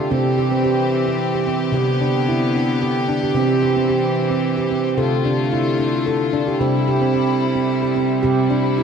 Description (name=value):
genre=world meditative, meditative tuned percussion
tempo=111 BPM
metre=3/4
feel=straight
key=C major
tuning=A4 = 440 Hz
part: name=bright chamber string section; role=sustained chords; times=0.0-8.8 s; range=C3 to G4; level=-23 LUFS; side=left 3 dB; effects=shimmer reverb
part: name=handpan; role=arpeggios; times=0.0-8.8 s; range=C3 to A4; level=-17 LUFS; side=right 1 dB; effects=ping-pong delay, shimmer reverb
room=wet concert hall reverb, RT60 2.6 s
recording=cassette tape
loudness=-16 LUFS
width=side -6 dB against mid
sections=0.0-8.8 A section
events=none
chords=0.1 C; 1.7 G/C; 3.4 C; 5.0 Dm/C; 6.6 C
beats=| 0.11 0.65 1.19 | 1.73 2.27 2.81 | 3.35 3.89 4.44 | 4.98 5.52 6.06 | 6.60 7.15 7.69 | 8.23 8.78